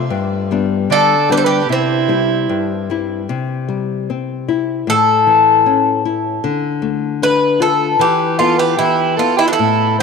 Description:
fado-style ballad; 76 BPM; 2/4; rubato; C major; A4 = 439 Hz
nylon-string guitar; accompaniment; 0.0-10.0 s; G2 to F4; -18 LUFS; left 7 dB
Greek bouzouki; melody; 0.9-10.0 s; C4 to B4; -15 LUFS; left 2 dB
warm soprano saxophone; second line; 0.9-2.9, 8.0-10.0 s; E4 to D5; -18 LUFS; right 13 dB
moderate plate reverb, RT60 3.7 s; 1960s-style stereo with parts hard left and right; -13 LUFS; side -5 dB against mid
0.0-3.3 A section; 3.3-10.0 A section
0.1 G; 1.7 C; 4.9 A; 6.4 Dm; 8.0 E5
| 0.10 0.89 | 1.68 2.47 | 3.28 4.08 | 4.87 5.65 | 6.43 7.21 | 7.99 8.78 | 9.58

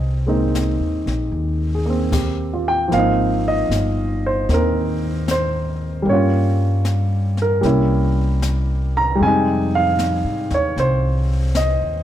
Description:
jazz ballad; 76 BPM; 4/4; swing 67% on 8ths; Ab major; A4 = 442 Hz
warm baby grand piano; accompaniment; 0.0-12.0 s; C3 to Bb5; -19 LUFS; right 1 dB
upright bass; bass; 0.0-12.0 s; G1 to Ab2; -20 LUFS; equal
jazz brush drum kit; drums; 0.6-12.0 s; brushed snare drum, crash cymbal, hi-hat, kick drum, snare drum; -28 LUFS; left 3 dB
light reverb; -16 LUFS; side -11 dB against mid
0.0-2.9 A section; 2.9-12.0 B section
0.0 Abadd9; 2.9 Ab69; 6.1 Gm7b5; 7.6 C7b9; 9.2 Fm7
0.53 1.32 2.11 | 2.91 3.70 4.49 5.28 | 6.06 6.85 7.64 8.42 | 9.21 9.99 10.77 11.55

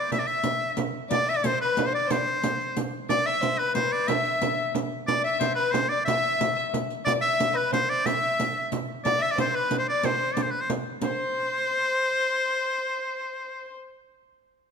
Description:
medieval dance; 121 BPM (dotted quarters); 6/8; straight; C major; A4 = 440 Hz
edgy shawm; melody; 0.0-13.8 s; B4 to E5; -26 LUFS; equal
dark fiddle; second line; 0.0-13.8 s; B4 to E5; -30 LUFS; left 6 dB
frame drum; percussion; 0.1-11.2 s; -30 LUFS; right 9 dB
riq; percussion; 0.1-11.2 s; -34 LUFS; left 6 dB
moderate concert hall reverb, RT60 1.9 s; close, detailed microphones; -23 LUFS; side -6 dB against mid
0.0-3.1 A section; 3.1-11.0 A section; 11.0-13.0 B section
| 0.11 0.60 | 1.10 1.60 | 2.10 2.59 | 3.09 3.59 | 4.08 4.58 | 5.08 5.57 | 6.07 6.57 | 7.06 7.56 | 8.05 8.55 | 9.04 9.54 | 10.04 10.53 | 11.03 11.52 | 12.02 12.51

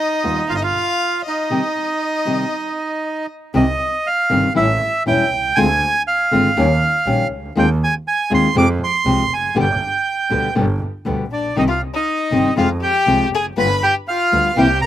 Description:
tango; 120 BPM; 4/4; rubato; C harmonic minor; A4 = 440 Hz
bandoneon; melody; 0.0-14.9 s; Eb4 to D6; -18 LUFS; right 3 dB; slapback echo
warm violin; second line; 0.0-3.3, 11.3-14.9 s; D4 to F5; -22 LUFS; left 8 dB
nylon-string guitar; accompaniment; 0.2-14.7 s; B2 to G4; -18 LUFS; left 2 dB
clear double bass; bass; 0.2-14.8 s; E1 to F2; -22 LUFS; right 1 dB
little or no reverb; recorded outdoors, with no room sound; -15 LUFS; side -12 dB against mid
0.0-3.5 A section; 3.5-14.9 B section
break 1.5-3.5
0.5 Ebadd9/G; 1.5 Cm; 4.6 A7; 5.6 Dm7b5; 6.6 Eb7; 7.6 Ab6/Eb; 8.6 Fmadd9; 9.6 G; 11.6 Cm; 12.6 Fm; 13.6 G7
0.50 1.00 | 1.51 2.01 2.52 3.04 | 3.55 4.05 4.56 5.06 | 5.56 6.06 6.56 7.06 | 7.56 8.06 8.55 9.05 | 9.55 10.05 10.56 11.06 | 11.57 12.07 12.58 13.08 | 13.58 14.08 14.57

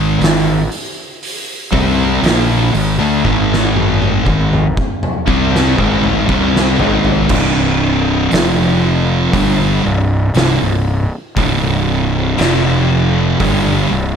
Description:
stoner and doom metal; 59 BPM; 4/4; straight; A4 = 439 Hz
fuzz guitar; riff; 0.0-7.3 s; Ab2 to C4; -19 LUFS; left 1 dB; distortion
thick fuzz guitar; riff; 0.0-14.2 s; C2 to C4; -17 LUFS; left 8 dB; distortion
thick fuzz guitar; riff; 0.0-14.2 s; C2 to C4; -17 LUFS; right 9 dB; distortion
fuzz fingered electric bass; bass; 0.0-14.2 s; C1 to D2; -18 LUFS; equal; overdrive
oversized low-tuned drum kit; drums; 0.2-13.6 s; crash cymbal, hi-hat, kick drum, snare drum, toms; -18 LUFS; equal
small room ambience; -11 LUFS; side -7 dB against mid
0.0-7.3 A section; 7.3-14.2 B section
drum fill 3.2-7.3
0.0 Ab5; 7.3 C5; 8.3 F5; 9.3 C5; 12.4 F5; 13.4 C5
0.21 1.22 2.23 | 3.24 4.25 5.27 6.28 | 7.30 8.31 9.33 10.34 | 11.36 12.38 13.40

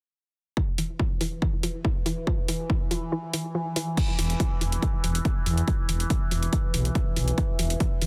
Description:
driving peak-time techno; 141 BPM; 4/4; straight; A4 = 440 Hz
analog pluck; riff; 0.6-8.1 s; E3 to F3; -35 LUFS; equal; chorus, tube saturation, sidechain pumping, digital delay
overtone-sweeping drone; drone; 1.0-8.1 s; E3; -36 LUFS; equal; chorus, built-in reverb, sidechain pumping
electronic kick drum; drums; 0.6-7.9 s; -28 LUFS; equal
techno drum kit; drums; 0.8-8.1 s; crash cymbal, hi-hat; -34 LUFS; equal; sidechain pumping on hats, sidechain pumping on cymbals
growling FM bass; bass; 4.2-8.1 s; E1 to E2; -29 LUFS; equal; sidechain pumping
little or no reverb; dense, heavily limited modern master; -26 LUFS; mono
0.6-4.0 A section; 4.0-8.1 B section
filter sweep on synth arpeggio sound 0.6-4.0; kick drops out 3.1-4.0
0.6 N.C.; 4.0 E5
| 0.57 0.99 1.42 1.85 | 2.27 2.70 3.12 3.55 | 3.97 4.40 4.83 5.25 | 5.68 6.10 6.53 6.95 | 7.38 7.80

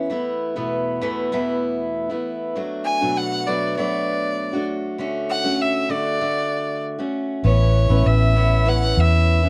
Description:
pop; 98 BPM; 4/4; straight; A major; A4 = 440 Hz
picked steel-string acoustic guitar; accompaniment; 0.0-9.5 s; E2 to F#4; -25 LUFS; equal
clear violin; melody; 2.9-9.5 s; C#5 to G#5; -25 LUFS; equal
vintage muted fingered electric bass; bass; 7.4-9.5 s; A1 to E2; -18 LUFS; equal
light reverb; -21 LUFS; mono
0.0-9.5 A section
0.1 Esus4; 2.6 Bm7; 5.0 Dmaj7; 7.4 Aadd9
| 0.11 0.72 1.33 1.94 | 2.55 3.16 3.77 4.38 | 5.00 5.61 6.22 6.83 | 7.44 8.05 8.66 9.28

